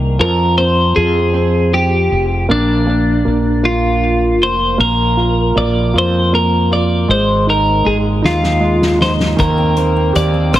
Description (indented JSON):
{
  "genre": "six-eight pop ballad",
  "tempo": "52 BPM (dotted quarters)",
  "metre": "6/8",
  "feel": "straight",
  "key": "unclear",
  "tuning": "A4 = 439 Hz",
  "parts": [
    { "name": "warm baby grand piano", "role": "accompaniment", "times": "0.0-10.6 s", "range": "Eb3 to G5", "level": "-18 LUFS", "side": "right 3 dB", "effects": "none" },
    { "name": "fretless electric bass", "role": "bass", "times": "0.0-10.6 s", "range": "F1 to F2", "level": "-16 LUFS", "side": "left 1 dB", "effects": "none" },
    { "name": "twelve-string electric guitar", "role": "melody", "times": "0.2-10.6 s", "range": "D4 to D5", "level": "-15 LUFS", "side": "left 1 dB", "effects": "tape echo" },
    { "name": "soft-mallet drum kit", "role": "drums", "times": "8.2-10.6 s", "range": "hi-hat, kick drum, rim click, snare drum", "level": "-19 LUFS", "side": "left 1 dB", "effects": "none" },
    { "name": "fingerpicked steel-string acoustic guitar", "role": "arpeggios", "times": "9.4-10.6 s", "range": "Bb3 to C4", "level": "-23 LUFS", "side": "left 4 dB", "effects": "none" }
  ],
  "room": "light reverb, studio reverb",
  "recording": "heavily compressed radio sound",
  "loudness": "-11 LUFS",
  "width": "side -13 dB against mid",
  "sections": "0.0-4.8 A section; 4.8-10.6 B section",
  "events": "drum fill 8.2-9.4",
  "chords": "0.2 Fsus2; 2.5 Bb; 4.8 Bb5; 7.1 Ab5; 9.4 Eb6"
}